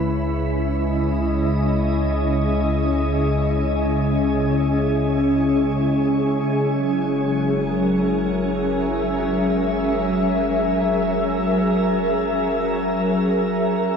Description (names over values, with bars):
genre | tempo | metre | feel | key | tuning
ambient | free time | none | none | unclear | A4 = 441 Hz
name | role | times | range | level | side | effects
glassy FM pad | sustained chords | 0.0-14.0 s | C#3 to B5 | -19 LUFS | equal | ensemble chorus, built-in reverb
round analog bass | bass | 0.0-14.0 s | F#1 to C#2 | -29 LUFS | equal | none
analog drone | drone | 0.0-14.0 s | G#3 | -30 LUFS | right 1 dB | chorus
room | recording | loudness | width
wet shimmer reverb, RT60 7.4 s | dark, warm production | -18 LUFS | side -6 dB against mid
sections
0.0-14.0 A section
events
fade-out on analog synth bass 0.0-14.0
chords
0.0 C#madd9; 6.5 F#7